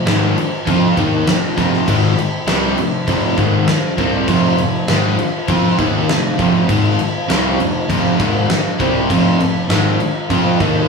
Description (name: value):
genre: hard rock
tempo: 100 BPM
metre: 4/4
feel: straight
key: F minor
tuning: A4 = 441 Hz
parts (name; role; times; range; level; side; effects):
- dark analog pad; sustained chords; 0.0-10.9 s; F4 to G5; -27 LUFS; left 2 dB; chorus, phaser
- fuzz picked electric bass; bass; 0.0-10.9 s; F1 to F2; -21 LUFS; equal; overdrive
- cranked stack guitar; riff; 0.1-10.9 s; F2 to F4; -21 LUFS; left 6 dB; overdrive
- overdriven electric guitar; riff; 0.1-10.9 s; F2 to F4; -21 LUFS; equal; none
- overdriven semi-hollow guitar; riff; 0.1-10.9 s; F2 to F4; -20 LUFS; right 6 dB; none
- huge arena drum kit; drums; 0.1-10.7 s; crash cymbal, kick drum, snare drum; -18 LUFS; left 1 dB; none
room: moderate large studio reverb, RT60 1.1 s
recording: band playing live in one room, studio ambience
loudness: -13 LUFS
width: side -4 dB against mid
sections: 0.0-10.9 A section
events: none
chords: 0.0 Fm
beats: 0.07 0.68 1.28 | 1.88 2.48 3.08 3.68 | 4.28 4.88 5.49 6.09 | 6.69 7.29 7.89 8.50 | 9.10 9.70 10.30